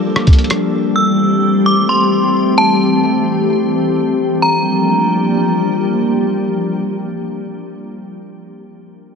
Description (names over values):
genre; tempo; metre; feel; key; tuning
hip hop, atmospheric cloud-rap; free time; none; none; G dorian; A4 = 440 Hz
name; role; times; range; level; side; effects
glassy FM pad; sustained chords; 0.0-7.4 s; E3 to A4; -15 LUFS; left 1 dB; ensemble chorus, built-in reverb, sidechain pumping
lo-fi sampler-style drum kit; drums; 0.2-0.6 s; hi-hat, kick drum, rim click; -10 LUFS; equal; none
metallic FM bell; melody; 1.0-5.8 s; A5 to E6; -17 LUFS; right 1 dB; chorus, low-pass filter, digital delay
room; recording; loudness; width
moderate huge ambient reverb, RT60 5.9 s; none; -12 LUFS; side -6 dB against mid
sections
0.0-4.4 A section; 4.4-8.1 B section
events
none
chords
0.0 Gm7; 0.7 Am7; 4.4 Gm7